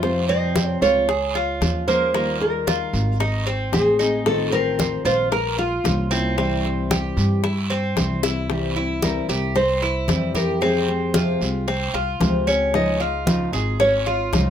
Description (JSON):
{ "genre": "latin, Cuban son and guajira", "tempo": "113 BPM", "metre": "4/4", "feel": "straight", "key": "unclear", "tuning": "A4 = 441 Hz", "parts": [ { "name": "nylon-string guitar", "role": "melody", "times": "0.0-14.5 s", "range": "E4 to Eb5", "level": "-23 LUFS", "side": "right 1 dB", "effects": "none" }, { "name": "fingerpicked steel-string acoustic guitar", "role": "accompaniment", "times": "0.0-14.5 s", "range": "C3 to C5", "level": "-26 LUFS", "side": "left 2 dB", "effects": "none" }, { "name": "Cuban tres", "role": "arpeggios", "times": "0.0-14.5 s", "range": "Bb3 to Bb4", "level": "-25 LUFS", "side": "right 1 dB", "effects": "none" }, { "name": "upright bass", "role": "bass", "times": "0.0-14.5 s", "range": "Ab1 to G2", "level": "-25 LUFS", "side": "equal", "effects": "none" }, { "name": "bongos", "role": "percussion", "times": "0.0-14.5 s", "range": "none", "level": "-28 LUFS", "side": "left 8 dB", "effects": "none" }, { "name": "congas", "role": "percussion", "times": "0.0-14.5 s", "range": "none", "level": "-25 LUFS", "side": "equal", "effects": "none" }, { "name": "guiro", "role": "percussion", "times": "0.0-14.5 s", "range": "none", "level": "-32 LUFS", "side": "right 5 dB", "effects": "none" } ], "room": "moderate small room reverb, RT60 0.6 s", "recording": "minimal, uncompressed stereo recording", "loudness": "-18 LUFS", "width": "side -9 dB against mid", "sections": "0.0-8.5 A section; 8.5-14.5 B section", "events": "drum fill 8.2", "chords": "0.0 Fm; 1.1 Db; 2.1 Ebadd9; 3.2 Ab; 4.3 F7/A; 5.3 Bbmadd9; 6.4 C; 10.6 Fmadd9; 12.7 Dbadd9" }